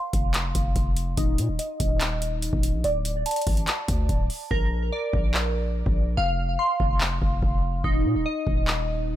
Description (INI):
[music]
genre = hip hop, trap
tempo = 144 BPM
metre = 4/4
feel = half-time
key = unclear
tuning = A4 = 440 Hz
[part]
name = glassy digital keys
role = arpeggios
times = 0.0-9.2 s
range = Eb4 to C6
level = -28 LUFS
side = right 1 dB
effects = chorus, low-pass filter, tape echo
[part]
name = distorted 808-style bass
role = bass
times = 0.1-9.2 s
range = D1 to Bb2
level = -26 LUFS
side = equal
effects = distortion
[part]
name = booming analog drum machine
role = drums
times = 0.1-8.8 s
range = handclaps, hi-hat, kick drum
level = -25 LUFS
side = equal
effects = none
[sound]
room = little or no reverb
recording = none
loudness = -22 LUFS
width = side -12 dB against mid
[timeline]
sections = 0.0-9.2 A section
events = hi-hats muted 4.5-9.2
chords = 0.0 F5; 1.2 Eb5; 2.8 D5; 4.5 Bb; 6.2 F5; 7.8 Eb5